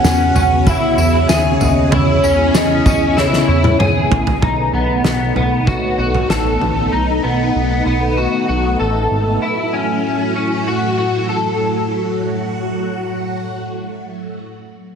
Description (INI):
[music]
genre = dream pop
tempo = 96 BPM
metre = 4/4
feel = straight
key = F# dorian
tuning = A4 = 440 Hz
[part]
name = warm velvety synth lead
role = melody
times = 0.0-4.1 s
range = C#5 to F#5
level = -18 LUFS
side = equal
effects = chorus, digital delay
[part]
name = string machine, full ensemble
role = sustained chords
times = 0.0-14.4 s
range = A2 to G#4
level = -19 LUFS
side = right 1 dB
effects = phaser, ensemble chorus
[part]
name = electric guitar at the edge of break-up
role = arpeggios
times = 0.0-11.9 s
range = B3 to A4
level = -19 LUFS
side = left 2 dB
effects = ensemble chorus, digital delay
[part]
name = chorused synth bass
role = bass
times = 0.0-9.4 s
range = G#1 to E2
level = -19 LUFS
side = equal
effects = none
[part]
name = loose indie drum kit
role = drums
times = 0.0-6.8 s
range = kick drum, snare drum, tambourine, toms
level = -18 LUFS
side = equal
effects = none
[part]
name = vibraphone with medium hard mallets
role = texture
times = 0.5-7.2 s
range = B3 to C#5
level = -27 LUFS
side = moving between left 1 dB and right 6 dB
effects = auto-pan, digital delay
[sound]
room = moderate lush hall reverb, RT60 2.7 s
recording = heavily compressed radio sound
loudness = -13 LUFS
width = side -7 dB against mid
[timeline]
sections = 0.0-4.4 A section; 4.4-14.4 B section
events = drum fill 3.2-4.4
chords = 0.0 E6; 4.4 B7; 9.4 F#m7/A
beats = 0.04 0.67 1.29 | 1.92 2.54 3.17 3.79 | 4.42 5.04 5.67 6.29 | 6.92 7.54 8.17 8.79 | 9.42 10.04 10.67 11.29 | 11.92 12.54 13.17 13.79